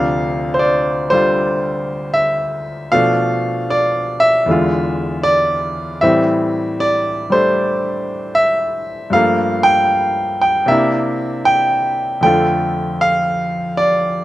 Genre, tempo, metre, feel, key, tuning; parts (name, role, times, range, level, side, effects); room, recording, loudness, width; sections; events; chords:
solo jazz; 77 BPM; 4/4; swing 66% on 8ths; D minor; A4 = 438 Hz
clear concert grand piano; solo; 0.0-14.2 s; D2 to G5; -14 LUFS; equal; slapback echo
little or no reverb; recorded outdoors, with no room sound; -14 LUFS; side -15 dB against mid
0.0-14.2 A section
0.0 Dm9; 2.9 Bm7b5; 4.5 E7b9; 6.0 Am7; 9.1 Gm9; 10.7 C9; 12.2 F6